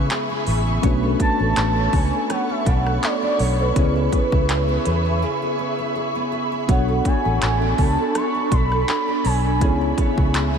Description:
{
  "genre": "contemporary R&B",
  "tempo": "82 BPM",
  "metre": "4/4",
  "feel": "swing 54% on 16ths",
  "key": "B dorian",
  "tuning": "A4 = 442 Hz",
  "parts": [
    { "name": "mellow tine electric piano", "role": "accompaniment", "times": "0.0-10.6 s", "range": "G#3 to C#5", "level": "-26 LUFS", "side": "left 1 dB", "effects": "medium stereo tremolo" },
    { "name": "ethereal airy pad", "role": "sustained chords", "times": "0.0-10.6 s", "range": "D4 to C#6", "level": "-26 LUFS", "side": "right 1 dB", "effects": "ensemble chorus, built-in reverb" },
    { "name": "nylon-string guitar", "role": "arpeggios", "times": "0.0-10.6 s", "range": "C#3 to C#5", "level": "-29 LUFS", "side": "right 4 dB", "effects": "lush chorus, diffuse ambient delay" },
    { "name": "vintage muted fingered electric bass", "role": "bass", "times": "0.0-10.6 s", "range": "A1 to E2", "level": "-21 LUFS", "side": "equal", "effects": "none" },
    { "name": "trap drum kit", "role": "drums", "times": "0.1-10.5 s", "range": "handclaps, hi-hat, kick drum, rim click", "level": "-24 LUFS", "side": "equal", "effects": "vintage 12-bit sampler grit" },
    { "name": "gliding portamento lead", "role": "melody", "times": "1.2-10.0 s", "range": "B4 to C#6", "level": "-25 LUFS", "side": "right 1 dB", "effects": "chorus, diffuse ambient delay" }
  ],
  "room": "moderate huge ambient reverb, RT60 4.0 s",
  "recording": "dreamy mix soaked in reverb",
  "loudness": "-18 LUFS",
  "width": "side -7 dB against mid",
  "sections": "0.0-10.6 A section",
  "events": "break 5.2-6.7",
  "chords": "0.0 C#m7; 0.8 Bm9; 3.8 C#m7; 6.7 Bm9; 9.6 C#m7"
}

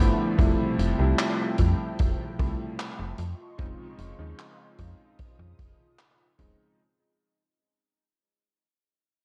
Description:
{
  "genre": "vaporwave",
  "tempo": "75 BPM",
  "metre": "4/4",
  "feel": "straight",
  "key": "unclear",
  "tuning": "A4 = 441 Hz",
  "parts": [
    { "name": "clear electric grand piano", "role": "accompaniment", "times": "0.0-6.8 s", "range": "C3 to E4", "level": "-32 LUFS", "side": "equal", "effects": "subtle chorus, vintage 12-bit sampler grit, analog delay" },
    { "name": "lush unison pad", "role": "sustained chords", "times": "0.0-6.8 s", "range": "F3 to Eb6", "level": "-40 LUFS", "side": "equal", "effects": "chorus, phaser" },
    { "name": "slap-like FM bass", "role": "bass", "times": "0.0-6.5 s", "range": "Eb1 to F2", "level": "-29 LUFS", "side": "equal", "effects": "none" },
    { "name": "kick drum", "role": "drums", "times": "0.4-6.6 s", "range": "none", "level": "-28 LUFS", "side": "equal", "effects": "none" },
    { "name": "swinging big-band drum kit", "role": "drums", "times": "0.4-6.6 s", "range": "handclaps, hi-hat", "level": "-37 LUFS", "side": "equal", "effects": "gated reverb" }
  ],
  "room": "light reverb, small room ambience",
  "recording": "cassette tape",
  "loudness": "-26 LUFS",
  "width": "mono",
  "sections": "0.0-6.8 A section",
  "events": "fade-out 0.0-6.8",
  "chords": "0.4 Fmaj9; 3.2 Dbmaj9/F"
}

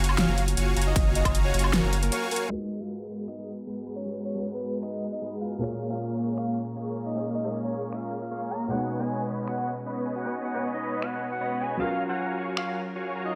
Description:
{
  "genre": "future bass",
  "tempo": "155 BPM",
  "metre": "4/4",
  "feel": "half-time",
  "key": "G# dorian",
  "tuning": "A4 = 441 Hz",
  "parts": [
    { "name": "airy breathy pad", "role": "sustained chords", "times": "0.0-13.4 s", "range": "F#3 to A#5", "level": "-42 LUFS", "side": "equal", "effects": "chorus, sidechain pumping" },
    { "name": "supersaw chords", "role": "riff", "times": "0.0-13.3 s", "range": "G#3 to C#6", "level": "-34 LUFS", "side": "equal", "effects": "sidechain pumping, low-pass filter" },
    { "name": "saturated sub bass", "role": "bass", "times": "0.0-2.1 s", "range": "F#1", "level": "-28 LUFS", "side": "equal", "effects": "sidechain pumping" },
    { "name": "big-room dance drum kit", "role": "drums", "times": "0.0-12.7 s", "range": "crash cymbal, finger snaps, hi-hat, ride cymbal, snare drum, woodblock", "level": "-31 LUFS", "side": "equal", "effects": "overdrive" },
    { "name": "soft octave-layered synth lead", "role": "melody", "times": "0.2-13.4 s", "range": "A#4 to A#5", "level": "-36 LUFS", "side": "equal", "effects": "chorus, sidechain pumping, digital delay" },
    { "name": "electronic kick drum", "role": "drums", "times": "1.0-1.3 s", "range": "none", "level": "-27 LUFS", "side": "equal", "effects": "overdrive" },
    { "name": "dark grand piano", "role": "accompaniment", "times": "2.5-13.4 s", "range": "A#2 to C#5", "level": "-37 LUFS", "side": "equal", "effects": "sidechain pumping, delay" }
  ],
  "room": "light reverb, digital ambience",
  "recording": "low-pass filter",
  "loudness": "-29 LUFS",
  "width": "mono",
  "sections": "0.0-2.5 A section; 2.5-13.4 B section",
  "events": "drop 0.0-2.5; break 2.1-2.5; filter sweep 2.5-13.4",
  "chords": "0.0 F#maj7; 2.5 G#m9; 5.6 A#m7; 8.7 B69; 11.8 F#maj7"
}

